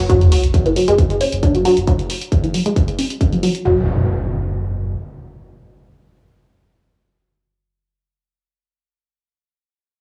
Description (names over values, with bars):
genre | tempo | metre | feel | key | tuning
driving peak-time techno | 135 BPM | 4/4 | straight | unclear | A4 = 440 Hz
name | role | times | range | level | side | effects
saturated sub bass | bass | 0.0-4.9 s | F#1 | -25 LUFS | equal | tube saturation, sidechain pumping, low-pass filter
resonant blip pluck | riff | 0.1-3.9 s | E3 to D4 | -20 LUFS | equal | phaser, overdrive, sidechain pumping, cassette tape, tape echo
electronic hi-hat | drums | 0.1-3.6 s | none | -30 LUFS | equal | cassette tape, sidechain pumping on hats, sidechain pumping on cymbals
electronic kick drum | drums | 0.1-3.3 s | none | -19 LUFS | equal | distortion, cassette tape
sub drop and impact | sound effects | 0.1-7.9 s | none | -21 LUFS | equal | none
room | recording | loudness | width
moderate lush hall reverb, RT60 1.6 s | home recording on cassette, small room ambience | -17 LUFS | mono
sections
0.1-3.7 A section; 3.7-7.2 B section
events
impact 0.1-1.9; filter sweep on synth arpeggio sound 0.1-3.7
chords
0.1 F#5; 3.7 N.C.